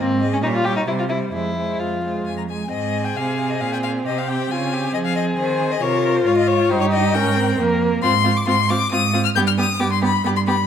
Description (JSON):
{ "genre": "quick classical-period movement for string quartet", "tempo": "135 BPM", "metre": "3/4", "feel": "rubato", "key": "Ab major", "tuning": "A4 = 441 Hz", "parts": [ { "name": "rich violin", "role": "second line", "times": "0.0-10.6 s", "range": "C4 to Bb4", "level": "-24 LUFS", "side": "left 1 dB", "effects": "none" }, { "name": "rich cello", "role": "bass", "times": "0.0-10.6 s", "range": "F2 to F3", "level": "-23 LUFS", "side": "right 4 dB", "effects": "none" }, { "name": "clear violin", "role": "melody", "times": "0.2-10.7 s", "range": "C5 to G6", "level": "-22 LUFS", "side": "left 8 dB", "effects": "none" }, { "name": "rich viola", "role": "accompaniment", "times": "0.2-10.5 s", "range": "G3 to F4", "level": "-23 LUFS", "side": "right 1 dB", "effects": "none" } ], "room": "moderate recital hall reverb, RT60 1.4 s", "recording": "none", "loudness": "-17 LUFS", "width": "side -8 dB against mid", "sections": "0.0-2.7 A section; 2.7-10.7 B section", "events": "none", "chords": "0.0 Ab; 0.4 Gdim/Bb; 0.9 C5; 1.3 Fm; 2.7 Ab; 4.1 Ab/C; 5.4 Eb5; 6.7 Eb/G; 8.0 Fm/Ab; 9.4 G" }